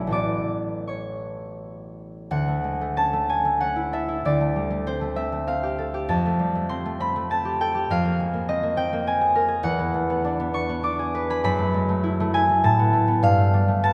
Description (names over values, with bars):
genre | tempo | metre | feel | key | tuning
classical, solo harp piece | 79-105 BPM | 3/4 | rubato | A major | A4 = 440 Hz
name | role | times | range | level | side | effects
concert harp | solo | 0.0-13.9 s | A1 to F#6 | -24 LUFS | equal | none
room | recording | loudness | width
wet concert hall reverb, RT60 2.2 s | none | -23 LUFS | mono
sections
0.0-2.3 A section; 2.3-13.9 B section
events
none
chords
0.1 A69; 2.3 Dmaj9; 4.2 Fadd9/D; 6.1 Fadd9; 7.9 G#add9/F; 9.6 E9; 11.4 F#m11; 12.6 Asus2; 13.2 G9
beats
| 0.12 0.87 1.60 | 2.31 2.96 3.61 | 4.24 4.85 5.47 | 6.09 6.70 7.30 | 7.90 8.49 9.07 | 9.64 10.24 10.84 | 11.43 12.03 12.63 | 13.22 13.83